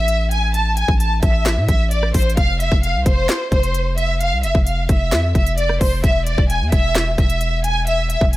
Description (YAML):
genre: hip hop, trap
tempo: 131 BPM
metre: 4/4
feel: half-time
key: unclear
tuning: A4 = 439 Hz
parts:
  - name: warm studio violin section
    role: melody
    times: 0.0-8.4 s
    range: C5 to A5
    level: -20 LUFS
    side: equal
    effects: none
  - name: long sustained 808-style bass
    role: bass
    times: 0.0-8.4 s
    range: E1 to A2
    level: -20 LUFS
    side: equal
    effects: none
  - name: trap drum kit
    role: drums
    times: 0.1-8.4 s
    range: handclaps, hi-hat, kick drum, rim click, snare drum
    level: -18 LUFS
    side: equal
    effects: none
room: digital ambience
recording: none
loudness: -15 LUFS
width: side -16 dB against mid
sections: 0.0-8.4 A section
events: none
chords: 0.0 A5; 2.4 F5; 6.0 N.C.